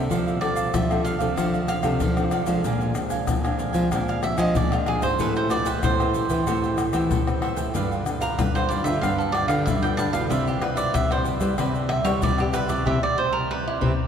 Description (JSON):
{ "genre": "samba and choro", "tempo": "94 BPM", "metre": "4/4", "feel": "straight", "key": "C major", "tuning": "A4 = 440 Hz", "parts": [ { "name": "cavaquinho", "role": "accompaniment", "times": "0.0-13.9 s", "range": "D4 to Ab5", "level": "-31 LUFS", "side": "right 4 dB", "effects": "none" }, { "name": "nylon-string guitar", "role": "accompaniment", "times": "0.0-13.9 s", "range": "Bb2 to D5", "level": "-30 LUFS", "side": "left 3 dB", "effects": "none" }, { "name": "nylon-string guitar", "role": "bass", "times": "0.0-13.9 s", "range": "G2 to G3", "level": "-26 LUFS", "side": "right 1 dB", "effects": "none" }, { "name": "tube shaker, surdo, pandeiro and tamborim", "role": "percussion", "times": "0.1-14.0 s", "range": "none", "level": "-26 LUFS", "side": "left 3 dB", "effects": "none" }, { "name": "cavaquinho", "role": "melody", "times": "0.4-13.8 s", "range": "E4 to A5", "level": "-27 LUFS", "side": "right 3 dB", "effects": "none" } ], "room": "wet cathedral reverb, RT60 5.7 s", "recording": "recorded in a church or concert hall", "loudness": "-21 LUFS", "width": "side -8 dB against mid", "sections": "0.0-14.1 A section", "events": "cavaquinho solo 0.0-14.1; band accent 12.9-14.1", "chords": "0.1 F6; 2.6 Bb9; 5.2 Am9; 7.8 G7; 10.3 Cmaj9", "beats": "| 0.10 0.74 1.38 2.01 | 2.65 3.29 3.92 4.56 | 5.20 5.84 6.47 7.11 | 7.75 8.39 9.03 9.67 | 10.31 10.95 11.58 12.22 | 12.86 13.50" }